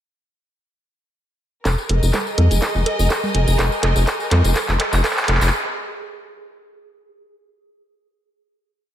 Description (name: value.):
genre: minimal techno.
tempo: 124 BPM.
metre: 4/4.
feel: swing 54% on 16ths.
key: F minor.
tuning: A4 = 440 Hz.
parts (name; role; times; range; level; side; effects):
rubbery square bass; bass; 1.7-5.5 s; F1 to F2; -17 LUFS; equal; sidechain pumping.
electronic kick drum; drums; 1.7-5.1 s; none; -28 LUFS; equal; high-pass filter on kick.
punchy analog drum machine; drums; 1.7-5.6 s; handclaps, hi-hat; -22 LUFS; equal; high-pass filter on snare, high-pass filter on hats, high-pass filter on room.
bongos and congas; percussion; 1.7-5.4 s; none; -28 LUFS; right 4 dB; analog delay.
tambourine; percussion; 1.7-5.5 s; none; -31 LUFS; left 5 dB; none.
clear symphonic string section; texture; 1.7-5.5 s; Bb4 to Ab5; -27 LUFS; left 1 dB; sidechain pumping.
pulsing gated texture; texture; 1.8-5.5 s; Ab4; -30 LUFS; right 4 dB; chorus, built-in reverb, sidechain pumping.
room: moderate lush hall reverb, RT60 1.7 s.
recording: dreamy mix soaked in reverb.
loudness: -16 LUFS.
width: side -11 dB against mid.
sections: 1.7-5.5 build.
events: build-up 1.7-5.5; drum fill 1.7-5.5.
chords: 1.7 Fm.